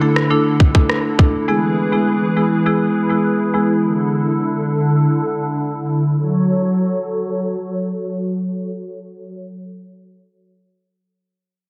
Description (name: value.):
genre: dancehall.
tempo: 102 BPM.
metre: 4/4.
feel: straight.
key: F# minor.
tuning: A4 = 440 Hz.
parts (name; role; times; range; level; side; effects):
marimba with medium mallets; accompaniment; 0.0-3.8 s; G#3 to A4; -20 LUFS; equal; low-pass filter.
hollow soft pad; sustained chords; 0.0-9.3 s; D3 to C#5; -21 LUFS; equal; ensemble chorus, sidechain pumping, low-pass filter.
downlifter; sound effects; 0.0-1.5 s; none; barely audible; none; none.
island pop drum kit; drums; 0.2-1.3 s; kick drum, rim click; -16 LUFS; equal; vintage 12-bit sampler grit.
room: moderate lush hall reverb, RT60 1.9 s.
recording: dense, heavily limited modern master.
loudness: -18 LUFS.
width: mono.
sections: 0.0-6.2 A section; 6.2-8.5 B section.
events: filter sweep 0.0-6.2.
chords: 0.0 Dsus2; 1.5 E; 3.8 Dsus2; 6.2 F#m.